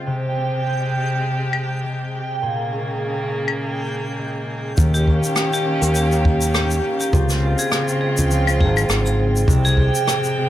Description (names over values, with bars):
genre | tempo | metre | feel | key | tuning
folktronica | 102 BPM | 4/4 | swing 56% on 16ths | Ab major | A4 = 440 Hz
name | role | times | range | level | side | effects
warm string quartet | sustained chords | 0.0-10.5 s | C3 to G5 | -26 LUFS | right 1 dB | none
concert harp | arpeggios | 0.0-10.5 s | Bb2 to Ab4 | -24 LUFS | left 2 dB | low-pass filter, digital delay
backwards swelling texture | texture | 0.0-10.5 s | G5 | -29 LUFS | right 5 dB | built-in reverb
claves, shaker and rim click | drums | 1.5-10.3 s | none | -24 LUFS | left 2 dB | none
fingered electric bass | bass | 4.8-9.9 s | Ab1 to Eb2 | -19 LUFS | equal | none
kick drum | drums | 4.8-9.9 s | none | -19 LUFS | equal | none
vibraphone with hard mallets | second line | 4.9-10.5 s | G4 to Ab4 | -24 LUFS | right 1 dB | vintage 12-bit sampler grit, digital delay
room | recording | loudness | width
studio reverb | none | -17 LUFS | side -12 dB against mid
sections
0.0-4.8 A section; 4.8-10.5 B section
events
none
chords
0.1 Abmaj7/C; 2.4 Bbm7; 4.8 Eb7; 7.1 Dbmaj7; 9.5 Abmaj7/C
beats
| 0.07 0.66 1.25 1.83 | 2.42 3.01 3.60 4.19 | 4.78 5.36 5.95 6.54 | 7.13 7.72 8.30 8.89 | 9.48 10.07